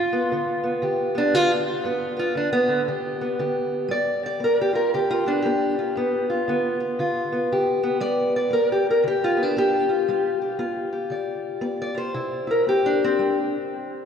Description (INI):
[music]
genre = acoustic country blues, solo or duo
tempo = 116 BPM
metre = 4/4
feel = swing 64% on 8ths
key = G mixolydian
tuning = A4 = 439 Hz
[part]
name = fingerpicked steel-string acoustic guitar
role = solo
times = 0.0-14.1 s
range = G2 to D5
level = -20 LUFS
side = equal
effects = none
[sound]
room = wet church reverb, RT60 3.5 s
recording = recorded in a church or concert hall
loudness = -20 LUFS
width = side -7 dB against mid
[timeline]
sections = 0.0-3.9 A section; 3.9-14.1 B section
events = steel-string acoustic guitar solo 0.0-3.9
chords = 0.0 G7; 12.2 C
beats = 0.32 0.83 1.34 | 1.85 2.36 2.87 3.38 | 3.89 4.41 4.92 5.43 | 5.95 6.46 6.98 7.50 | 8.01 8.53 9.05 9.56 | 10.08 10.60 11.12 11.63 | 12.15 12.67 13.19 13.71